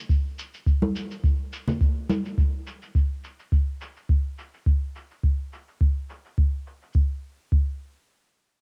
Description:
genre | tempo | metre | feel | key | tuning
sunset chillout | 105 BPM | 4/4 | swing 54% on 16ths | none | none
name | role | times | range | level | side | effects
electronic kick drum | drums | 0.1-7.7 s | none | -24 LUFS | equal | cassette tape
shaker | drums | 0.1-6.9 s | none | -47 LUFS | equal | low-pass filter on perc, cassette tape, low-pass filter on snare, low-pass filter on hats, low-pass filter on room
congas | percussion | 0.8-2.2 s | none | -30 LUFS | equal | none
room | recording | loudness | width
little or no reverb | home recording on cassette | -26 LUFS | mono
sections
0.0-6.9 A section; 6.9-8.6 B section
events
filter sweep on drum 0.0-6.9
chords
none

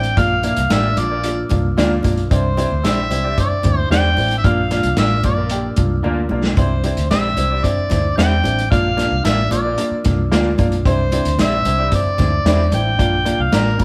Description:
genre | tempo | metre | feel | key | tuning
uptempo 1960s-style soul | 112 BPM | 4/4 | straight | C mixolydian | A4 = 440 Hz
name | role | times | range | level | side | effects
mellow harmonica | melody | 0.0-13.8 s | Bb4 to G5 | -23 LUFS | equal | none
glockenspiel with soft plastic mallets | second line | 0.0-13.8 s | Bb5 to G6 | -33 LUFS | equal | none
clear upright piano | accompaniment | 0.0-13.8 s | Bb3 to F5 | -25 LUFS | equal | none
mellow tonewheel organ | sustained chords | 0.0-13.8 s | E3 to D4 | -36 LUFS | equal | none
vintage muted fingered electric bass | bass | 0.0-13.8 s | A1 to E2 | -23 LUFS | equal | none
vintage drum kit | drums | 0.0-13.8 s | hi-hat, kick drum, snare drum | -21 LUFS | equal | none
congas | percussion | 0.4-13.8 s | none | -33 LUFS | equal | none
electric guitar through a small old amp | stabs | 0.7-13.7 s | E4 to D5 | -31 LUFS | equal | spring reverb
room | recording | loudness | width
moderate stone room reverb, RT60 1.1 s | band playing live in one room | -17 LUFS | mono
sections
0.0-13.8 A section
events
upright piano fill 1.5-2.3; drum fill 6.0-6.6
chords
0.2 Bb; 2.3 Cadd9; 4.4 Bb; 6.6 Cadd9; 8.7 Bb; 10.9 Cadd9; 13.0 Bb

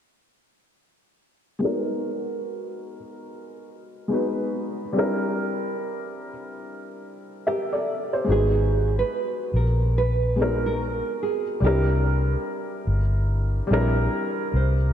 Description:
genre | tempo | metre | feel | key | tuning
hip hop | 72 BPM | 4/4 | swing 63% on 16ths | unclear | A4 = 440 Hz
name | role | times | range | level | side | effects
felt-muted upright piano | accompaniment | 1.6-14.9 s | G3 to E5 | -26 LUFS | left 1 dB | low-pass filter
nylon-string guitar | melody | 7.5-14.9 s | G4 to C5 | -27 LUFS | right 4 dB | low-pass filter
vintage muted fingered electric bass | bass | 8.3-14.9 s | G1 to C2 | -22 LUFS | equal | none
room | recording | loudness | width
moderate lush hall reverb, RT60 2.7 s | dreamy mix soaked in reverb | -22 LUFS | side -9 dB against mid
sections
1.6-8.3 A section; 8.3-14.9 B section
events
filter sweep on felt piano 1.6-8.3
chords
1.6 G#m9; 4.9 C7; 8.3 G#m9; 11.6 C7

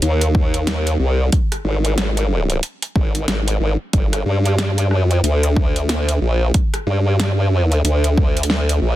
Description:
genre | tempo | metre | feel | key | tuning
glitch hop | 92 BPM | 4/4 | swing 60% on 16ths | G phrygian | A4 = 441 Hz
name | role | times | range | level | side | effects
formant-sweep wobble bass | bass | 0.0-9.0 s | G1 to G2 | -16 LUFS | equal | chorus
pop drum kit | drums | 0.0-8.8 s | hi-hat, rim click, snare drum | -23 LUFS | right 1 dB | overdrive
electronic kick drum | drums | 0.3-8.3 s | none | -17 LUFS | equal | overdrive
room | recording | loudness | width
little or no reverb | dense, heavily limited modern master | -16 LUFS | side -14 dB against mid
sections
0.0-9.0 A section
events
none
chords
none

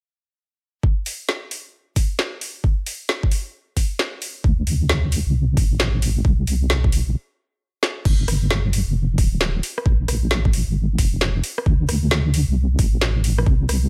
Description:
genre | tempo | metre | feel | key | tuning
UK garage, two-step garage | 133 BPM | 4/4 | swing 64% on 16ths | unclear | A4 = 438 Hz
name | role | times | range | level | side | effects
electronic kick drum | drums | 0.8-13.6 s | none | -21 LUFS | equal | overdrive
garage drum kit | drums | 1.1-13.8 s | crash cymbal, hi-hat, rim click, snare drum | -26 LUFS | equal | overdrive
deep soft wobble bass | bass | 4.4-13.9 s | D1 to D2 | -22 LUFS | equal | chorus, tube saturation
room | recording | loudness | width
little or no reverb | none | -21 LUFS | mono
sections
0.8-8.1 A section; 8.1-13.9 B section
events
stop 7.2-8.1; drum fill 7.8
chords
none

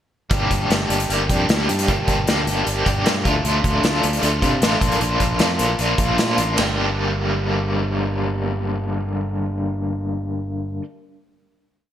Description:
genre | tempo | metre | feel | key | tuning
indie rock | 154 BPM | 4/4 | straight | G minor | A4 = 439 Hz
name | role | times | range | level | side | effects
overdriven electric guitar | riff | 0.3-10.8 s | G2 to G4 | -20 LUFS | equal | tremolo
growling fingered electric bass | bass | 0.3-10.8 s | G1 to C3 | -24 LUFS | equal | overdrive
loose indie drum kit | drums | 0.3-6.7 s | hi-hat, kick drum, ride cymbal, snare drum | -22 LUFS | equal | gated reverb
room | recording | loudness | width
moderate plate reverb, RT60 1.6 s | bright 1980s-style digital production | -18 LUFS | side -10 dB against mid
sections
0.3-6.6 interlude; 6.6-9.7 final chord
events
none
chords
0.3 Gm; 3.3 Dm7; 4.8 Bb; 6.6 Gm

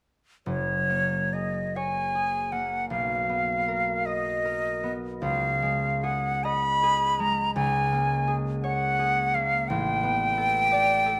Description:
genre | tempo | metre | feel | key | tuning
classical, impressionist duo for flute and harp | 44-59 BPM (dotted quarters) | 6/8 | rubato | F# major | A4 = 436 Hz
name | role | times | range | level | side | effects
bright silver concert flute | melody | 0.5-11.2 s | C#5 to B5 | -27 LUFS | equal | none
concert harp | accompaniment | 0.5-11.2 s | F#1 to D#5 | -32 LUFS | equal | none
room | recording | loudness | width
moderate scoring stage reverb, RT60 1.8 s | close, detailed microphones | -26 LUFS | mono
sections
0.5-11.2 A section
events
none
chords
0.5 F#add9; 2.9 Bmaj7#11; 5.2 C#sus2; 7.6 F#add9/C#; 9.7 A11

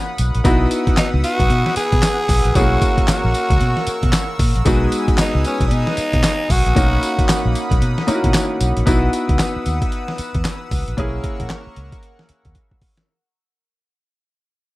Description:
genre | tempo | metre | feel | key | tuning
R&B, new jack swing | 114 BPM | 4/4 | swing 61% on 16ths | unclear | A4 = 437 Hz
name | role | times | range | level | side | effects
clear concert grand piano | accompaniment | 0.0-13.1 s | G#3 to G#4 | -23 LUFS | left 1 dB | none
chorused pulse-width pad | sustained chords | 0.0-13.1 s | A#3 to E6 | -27 LUFS | equal | none
vintage muted fingered electric bass | bass | 0.2-12.5 s | A#1 to B2 | -19 LUFS | equal | none
dusty soul sampler-style drum kit | drums | 0.2-13.1 s | handclaps, hi-hat, kick drum, snare drum, tambourine | -19 LUFS | equal | overdrive
growling tenor saxophone | melody | 1.0-7.6 s | C#4 to G#4 | -21 LUFS | equal | none
room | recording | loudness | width
little or no reverb | none | -15 LUFS | side -19 dB against mid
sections
0.0-8.9 A section; 8.9-13.1 B section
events
fade-out 8.9-13.1; drum fill 12.6-13.1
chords
0.4 C#m11/B (rootless); 2.6 F#7; 4.7 Emaj7/B; 6.8 C#m11; 11.0 F#7

